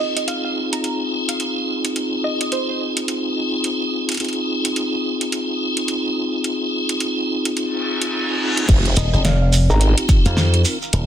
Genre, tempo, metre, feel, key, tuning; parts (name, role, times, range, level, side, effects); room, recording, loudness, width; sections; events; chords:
glitch hop; 107 BPM; 4/4; swing 60% on 16ths; F minor; A4 = 438 Hz
woody wave-folded pluck; melody; 0.0-2.8, 9.0-10.4 s; C5 to Bb5; -28 LUFS; right 2 dB; wide subtle chorus, cassette tape, tape echo
tonewheel organ; stabs; 0.0-11.1 s; C4 to Bb4; -21 LUFS; equal; overdrive, chorus vibrato, slow rotary speaker, sidechain pumping, tape echo
pop drum kit; drums; 0.2-11.1 s; crash cymbal, hi-hat, rim click, snare drum; -23 LUFS; right 1 dB; studio reverb
reverse cymbal and impact; sound effects; 7.7-10.9 s; -25 LUFS; left 1 dB
formant-sweep wobble bass; bass; 8.7-10.0 s; F1 to Ab1; -16 LUFS; equal; chorus
electronic kick drum; drums; 8.7-10.2 s; -14 LUFS; equal; studio reverb
shekere; percussion; 8.7-11.1 s; -28 LUFS; right 4 dB
slap bass with an envelope filter; bass; 9.0-11.1 s; Eb1 to F2; -16 LUFS; equal
light reverb, digital ambience; dense, heavily limited modern master; -17 LUFS; side -10 dB against mid
0.0-8.7 A section; 8.7-11.1 B section
reverse cymbal 7.7-8.7; drop 8.7-11.1; impact 8.7-10.9
0.0 Fm7